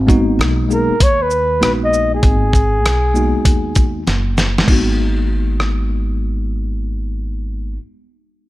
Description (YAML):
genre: hip hop, jazz-hop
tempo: 98 BPM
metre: 4/4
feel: swing 65% on 16ths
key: G# minor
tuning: A4 = 440 Hz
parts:
  - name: upright bass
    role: bass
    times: 0.0-7.8 s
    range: F#1 to D#2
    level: -18 LUFS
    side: equal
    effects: none
  - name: mellow tine electric piano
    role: accompaniment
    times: 0.1-7.8 s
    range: G#3 to G#4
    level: -20 LUFS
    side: left 1 dB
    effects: medium stereo tremolo
  - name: dusty soul sampler-style drum kit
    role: drums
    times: 0.1-5.8 s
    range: crash cymbal, hi-hat, kick drum, rim click, shaker, snare drum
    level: -15 LUFS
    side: equal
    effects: none
  - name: mellow flugelhorn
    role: melody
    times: 0.7-4.0 s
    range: G#4 to D#5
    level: -17 LUFS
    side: equal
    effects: slapback echo
room: digital ambience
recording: none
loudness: -14 LUFS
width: side -17 dB against mid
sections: 0.0-4.7 A section; 4.7-7.1 B section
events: drum fill 4.1-4.7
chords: 0.0 G#m9